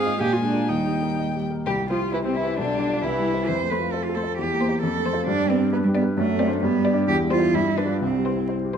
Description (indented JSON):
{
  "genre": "quick classical-period movement for piano quartet",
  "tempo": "121-135 BPM",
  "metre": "2/4",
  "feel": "rubato",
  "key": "C major",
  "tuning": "A4 = 440 Hz",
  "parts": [
    { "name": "rich violin", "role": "melody", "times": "0.0-8.8 s", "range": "C4 to Ab5", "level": "-30 LUFS", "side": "left 6 dB", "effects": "none" },
    { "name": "rich cello", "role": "second line", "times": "0.0-8.5 s", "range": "G3 to C5", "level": "-25 LUFS", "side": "right 5 dB", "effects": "none" },
    { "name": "rich viola", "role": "accompaniment", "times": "0.0-8.8 s", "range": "C3 to Ab4", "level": "-29 LUFS", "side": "right 2 dB", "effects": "none" },
    { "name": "warm baby grand piano", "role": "accompaniment", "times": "0.0-8.8 s", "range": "B1 to Eb5", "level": "-24 LUFS", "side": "left 2 dB", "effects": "none" }
  ],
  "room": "wet recital hall reverb, RT60 1.6 s",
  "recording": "vinyl crackle",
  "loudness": "-20 LUFS",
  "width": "side -7 dB against mid",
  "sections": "0.0-1.7 A section; 1.7-8.8 B section",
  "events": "none",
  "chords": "0.2 Bb7; 0.7 Eb; 1.7 C; 2.6 G7/B; 3.0 C; 3.5 F; 4.4 C7/E; 4.8 F; 5.3 G; 6.2 D7/F#; 6.6 G; 7.1 C/E; 7.5 G7; 8.0 C"
}